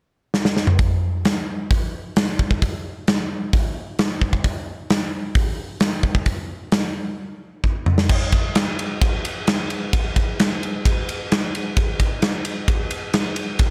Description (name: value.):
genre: metal.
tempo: 131 BPM.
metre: 4/4.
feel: straight.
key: none.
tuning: none.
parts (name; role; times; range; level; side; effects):
big rock drum kit; drums; 0.3-13.7 s; crash cymbal, hi-hat, kick drum, ride cymbal, snare drum, toms; -21 LUFS; equal; none.
room: light reverb.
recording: none.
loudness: -22 LUFS.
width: mono.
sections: 0.8-8.1 A section; 8.1-13.7 B section.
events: drum fill 0.3-0.8, 7.6-8.1.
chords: none.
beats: 0.33 | 0.79 1.24 1.70 2.15 | 2.61 3.07 3.52 3.98 | 4.44 4.89 5.35 5.81 | 6.26 6.72 7.18 7.64 | 8.10 8.55 9.01 9.47 | 9.93 10.38 10.84 11.30 | 11.76 12.22 12.68 13.14 | 13.60.